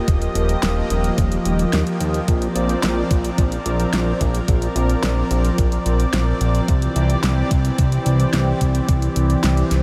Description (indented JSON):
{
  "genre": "synthwave",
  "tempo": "109 BPM",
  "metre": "4/4",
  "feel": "straight",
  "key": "unclear",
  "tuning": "A4 = 440 Hz",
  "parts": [
    { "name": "lush unison pad", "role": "sustained chords", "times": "0.0-9.8 s", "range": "E3 to Eb5", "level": "-24 LUFS", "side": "equal", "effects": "chorus, sidechain pumping" },
    { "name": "fat analog bass", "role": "bass", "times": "0.1-9.8 s", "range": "Eb1 to Eb2", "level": "-22 LUFS", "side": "equal", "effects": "tube saturation" },
    { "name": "electronic kick drum", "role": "drums", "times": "0.1-9.0 s", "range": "none", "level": "-21 LUFS", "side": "equal", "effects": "none" },
    { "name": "pop drum kit", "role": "drums", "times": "0.1-9.8 s", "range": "hi-hat, snare drum", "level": "-29 LUFS", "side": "equal", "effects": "overdrive" }
  ],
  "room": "moderate huge ambient reverb, RT60 7.6 s",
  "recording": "dreamy mix soaked in reverb",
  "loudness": "-19 LUFS",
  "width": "mono",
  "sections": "0.0-9.8 A section",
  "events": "none",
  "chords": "0.0 Ebadd9; 2.3 Bbadd9; 6.7 Cadd9"
}